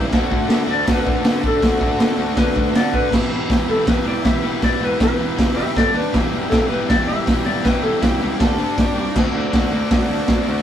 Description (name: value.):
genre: garage rock duo or trio.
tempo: 159 BPM.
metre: 4/4.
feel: straight.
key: E minor.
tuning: A4 = 440 Hz.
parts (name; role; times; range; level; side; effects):
clean lap steel guitar; melody; 0.0-9.1 s; D4 to E5; -22 LUFS; left 1 dB; none.
combo organ; sustained chords; 0.0-10.6 s; D4 to D5; -32 LUFS; right 2 dB; none.
raw garage guitar; riff; 0.0-10.6 s; E2 to D5; -22 LUFS; left 1 dB; overdrive.
fuzz picked electric bass; bass; 0.0-10.6 s; E1 to D3; -26 LUFS; equal; overdrive.
raw garage drum kit; drums; 0.1-10.4 s; crash cymbal, hi-hat, kick drum, snare drum; -19 LUFS; equal; none.
room: light reverb.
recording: rough rehearsal-room recording, warm saturation.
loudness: -16 LUFS.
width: side -10 dB against mid.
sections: 0.0-3.1 A section; 3.1-10.6 B section.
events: electric slide guitar solo 0.0-3.1.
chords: 0.1 D; 3.1 Em; 5.8 G5; 6.1 Em; 8.4 D5; 8.8 G5; 9.1 D.